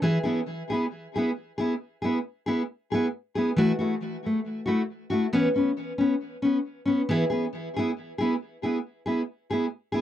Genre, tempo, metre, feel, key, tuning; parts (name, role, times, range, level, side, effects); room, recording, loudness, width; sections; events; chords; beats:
highlife; 136 BPM; 4/4; swing 54% on 16ths; E major; A4 = 439 Hz
fingerpicked steel-string acoustic guitar; solo; 0.0-10.0 s; E3 to G#4; -24 LUFS; equal; tape echo
moderate booth ambience, RT60 0.2 s; dry, close 1970s-style studio recording; -25 LUFS; side -11 dB against mid
0.0-7.1 A section; 7.1-10.0 B section
0.0 E; 3.6 Esus24; 5.3 C#7(no3); 7.1 E
| 0.04 0.49 0.93 1.37 | 1.81 2.25 2.70 3.14 | 3.58 4.02 4.46 4.90 | 5.34 5.78 6.22 6.66 | 7.10 7.54 7.98 8.41 | 8.85 9.29 9.73